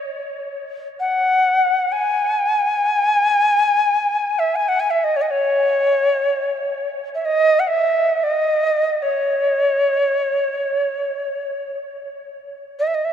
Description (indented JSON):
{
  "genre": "world meditative, free-time meditation music",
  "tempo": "free time",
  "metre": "none",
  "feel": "none",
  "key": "C# minor",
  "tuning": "A4 = 439 Hz",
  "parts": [
    { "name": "Native American-style cedar flute", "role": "solo", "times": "1.0-13.1 s", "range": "C#5 to G#5", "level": "-17 LUFS", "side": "equal", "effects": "none" }
  ],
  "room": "wet huge ambient reverb, RT60 6.5 s",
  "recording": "dark, warm production",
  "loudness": "-16 LUFS",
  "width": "side -9 dB against mid",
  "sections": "0.1-13.1 A section",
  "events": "none",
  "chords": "none",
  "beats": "free time"
}